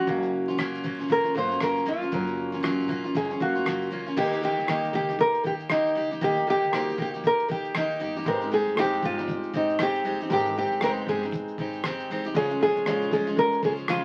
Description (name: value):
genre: acoustic pop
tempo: 117 BPM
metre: 4/4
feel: swing 60% on 16ths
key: Eb mixolydian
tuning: A4 = 442 Hz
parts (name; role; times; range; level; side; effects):
- nylon-string guitar; melody; 0.0-14.0 s; Eb4 to C5; -27 LUFS; equal; none
- picked steel-string acoustic guitar; accompaniment; 0.0-14.0 s; Db3 to G4; -33 LUFS; equal; none
- warm upright piano; accompaniment; 0.0-14.0 s; Gb3 to G5; -36 LUFS; equal; none
- upright bass; bass; 0.0-14.0 s; F1 to Eb2; -45 LUFS; equal; none
- cloth-damped thuddy drum kit; drums; 0.1-14.0 s; crash cymbal, kick drum, rim click, shaker; -34 LUFS; equal; none
room: moderate studio reverb, RT60 0.6 s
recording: very old 78 rpm record, vinyl crackle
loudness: -26 LUFS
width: mono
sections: 0.0-4.2 A section; 4.2-14.0 B section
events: none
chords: 0.1 Gbmaj7; 4.2 Eb; 8.3 Abmaj7; 12.4 Db